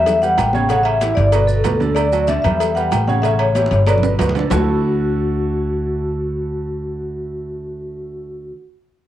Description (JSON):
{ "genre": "latin, salsa", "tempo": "189 BPM", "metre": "4/4", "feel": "straight", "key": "D major", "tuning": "A4 = 438 Hz", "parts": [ { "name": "vibraphone with medium mallets", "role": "melody", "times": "0.0-8.5 s", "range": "F#4 to G5", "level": "-19 LUFS", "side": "left 1 dB", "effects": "none" }, { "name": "clear baby grand piano", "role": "accompaniment", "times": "0.0-8.5 s", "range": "B2 to D5", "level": "-25 LUFS", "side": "right 8 dB", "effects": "cassette tape" }, { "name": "upright bass", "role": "bass", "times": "0.0-8.5 s", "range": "G1 to E2", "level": "-20 LUFS", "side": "equal", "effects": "none" }, { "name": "agogo bells and timbales", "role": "percussion", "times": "0.1-4.6 s", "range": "none", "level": "-26 LUFS", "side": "right 10 dB", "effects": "none" }, { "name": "congas", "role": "percussion", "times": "0.1-4.6 s", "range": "none", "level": "-26 LUFS", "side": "equal", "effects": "none" }, { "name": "cowbell and bongos", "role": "percussion", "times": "0.1-4.6 s", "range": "none", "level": "-26 LUFS", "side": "left 10 dB", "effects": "none" }, { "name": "maracas", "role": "percussion", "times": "0.1-4.6 s", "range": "none", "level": "-39 LUFS", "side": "right 9 dB", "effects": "none" } ], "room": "moderate spring reverb, RT60 1.4 s, studio reverb", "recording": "home recording on cassette", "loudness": "-15 LUFS", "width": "side -12 dB against mid", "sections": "0.0-4.5 A section; 4.5-7.1 B section", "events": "drum fill 3.6-4.5", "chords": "0.1 Em; 0.7 A7; 1.3 G; 2.0 Dadd9; 2.6 Em; 3.2 A7; 3.9 G; 4.5 Dadd9", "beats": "0.06 0.38 | 0.69 1.01 1.33 1.65 | 1.96 2.28 2.60 2.92 | 3.23 3.55 3.87 4.19 | 4.51 4.83 5.14 5.46 | 5.78 6.10 6.42 6.73" }